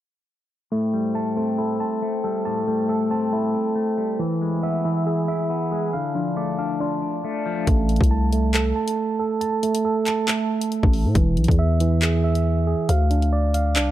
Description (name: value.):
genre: hip hop, drill.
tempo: 138 BPM.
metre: 4/4.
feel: half-time.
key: A minor.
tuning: A4 = 440 Hz.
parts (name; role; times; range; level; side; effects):
semi-hollow electric guitar; accompaniment; 0.7-7.7 s; A2 to E5; -27 LUFS; left 9 dB; none.
glass harmonica; sustained chords; 0.7-7.7 s; A3 to B5; -32 LUFS; left 4 dB; none.
tine electric piano; arpeggios; 0.7-13.9 s; E3 to A5; -23 LUFS; right 3 dB; low-pass filter, tape echo.
growling 808-style bass; bass; 7.7-13.9 s; E1 to A2; -20 LUFS; left 1 dB; none.
drill drum kit; drums; 7.7-13.9 s; handclaps, hi-hat, kick drum; -22 LUFS; left 1 dB; none.
room: light reverb.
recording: dark, warm production, low-pass filter.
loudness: -20 LUFS.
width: side -13 dB against mid.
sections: 0.7-7.7 A section; 7.7-13.9 B section.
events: filter sweep 0.7-7.7; filter sweep on tine electric piano 7.7-13.9.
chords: 0.7 Am7; 4.2 E; 5.9 Dm; 7.7 Am; 11.2 E; 12.9 Dm.